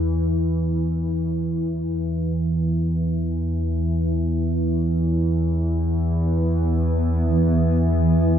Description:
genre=dark ambient drone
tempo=free time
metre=none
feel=none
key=unclear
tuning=A4 = 439 Hz
part: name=analog drone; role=drone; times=0.0-8.4 s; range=E2 to E3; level=-20 LUFS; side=equal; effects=chorus
part: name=granular cloud pad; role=sustained chords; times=6.3-8.4 s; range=E3 to B3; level=-24 LUFS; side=right 1 dB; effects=built-in reverb
room=moderate huge ambient reverb, RT60 8.2 s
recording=dreamy mix soaked in reverb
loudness=-20 LUFS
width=side -9 dB against mid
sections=0.0-8.4 A section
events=none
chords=0.0 E5

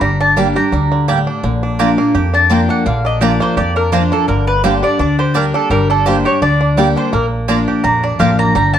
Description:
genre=bluegrass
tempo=169 BPM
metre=4/4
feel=swing 54% on 8ths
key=unclear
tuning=A4 = 436 Hz
part: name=mandolin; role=melody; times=0.0-8.8 s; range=A4 to Bb5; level=-16 LUFS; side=equal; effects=none
part: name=picked steel-string acoustic guitar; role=accompaniment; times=0.0-8.8 s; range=F2 to G4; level=-17 LUFS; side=left 2 dB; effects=none
part: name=bluegrass banjo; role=arpeggios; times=0.0-8.8 s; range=D3 to G4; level=-21 LUFS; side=right 3 dB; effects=none
part: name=upright bass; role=bass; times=0.0-8.8 s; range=G1 to F2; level=-18 LUFS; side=equal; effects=none
part: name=mandolin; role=stabs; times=0.4-8.3 s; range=Bb3 to Bb5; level=-20 LUFS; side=right 7 dB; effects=none
room=light reverb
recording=dark, warm production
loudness=-12 LUFS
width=side -9 dB against mid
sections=0.0-1.4 A section; 1.4-8.8 B section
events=none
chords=0.0 Gm; 1.4 Bb; 4.3 Gm; 7.1 Bb

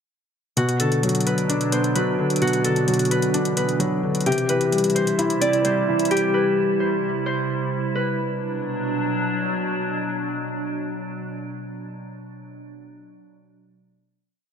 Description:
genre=hip hop, trap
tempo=130 BPM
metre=4/4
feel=half-time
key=B phrygian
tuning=A4 = 441 Hz
part: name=Celtic harp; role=melody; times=0.6-10.0 s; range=F#4 to D5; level=-23 LUFS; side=left 1 dB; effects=low-pass filter, ping-pong delay
part: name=felt-muted upright piano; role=accompaniment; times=0.6-7.0 s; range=B2 to E4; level=-22 LUFS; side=left 1 dB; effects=low-pass filter
part: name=glassy FM pad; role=sustained chords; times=1.0-12.2 s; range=B2 to E4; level=-26 LUFS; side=right 2 dB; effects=ensemble chorus, built-in reverb
part: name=electronic hi-hat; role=drums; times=0.6-6.2 s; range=none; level=-29 LUFS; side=left 2 dB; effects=none
room=light reverb, studio ambience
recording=none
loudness=-20 LUFS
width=side -7 dB against mid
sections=0.6-8.0 breakdown; 8.0-11.6 final chord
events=none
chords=0.6 Bm; 4.3 C; 8.0 Bm

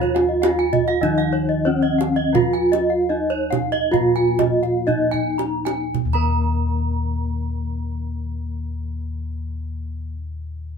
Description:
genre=Balinese gamelan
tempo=53-112 BPM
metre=4/4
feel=straight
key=unclear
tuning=A4 = 441 Hz
part: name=gamelan-type bronze metallophone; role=melody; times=0.0-10.1 s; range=Db4-45c to Bb4+25c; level=-20 LUFS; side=right 1 dB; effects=none
part: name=gamelan-type bronze metallophone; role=accompaniment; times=0.0-10.1 s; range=Eb3 to Bb3+25c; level=-30 LUFS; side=left 1 dB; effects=none
part: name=gamelan-type bronze metallophone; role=arpeggios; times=0.0-10.1 s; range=Db5-45c to Bb5+25c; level=-27 LUFS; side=right 5 dB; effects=none
part: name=gamelan-type bossed gongs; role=bass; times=0.0-10.0 s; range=Eb2 to F4+30c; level=-25 LUFS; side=left 2 dB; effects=none
part: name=kendang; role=percussion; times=0.0-6.5 s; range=none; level=-25 LUFS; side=right 7 dB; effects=none
part: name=gamelan-type bronze metallophone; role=arpeggios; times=0.1-10.1 s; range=Db5-45c to Bb5+25c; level=-26 LUFS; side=left 2 dB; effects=none
room=moderate small room reverb, RT60 0.6 s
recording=band playing live in one room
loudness=-18 LUFS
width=side -6 dB against mid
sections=0.0-5.9 A section; 5.9-10.5 B section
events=slowing down 0.0-5.9; drum fill 4.9-5.9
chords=none

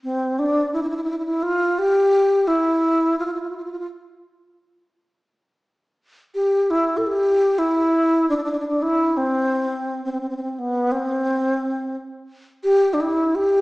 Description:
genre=turkish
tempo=171 BPM (eighths)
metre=9/8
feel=straight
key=C makam rast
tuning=A4 = 441 Hz
part: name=bright wooden-headed alto flute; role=solo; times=0.0-13.6 s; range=B3 to A4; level=-18 LUFS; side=equal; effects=none
room=wet recital hall reverb, RT60 1.6 s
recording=recorded in a church or concert hall, small speaker sound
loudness=-18 LUFS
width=side -21 dB against mid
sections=0.0-13.6 A section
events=none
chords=none

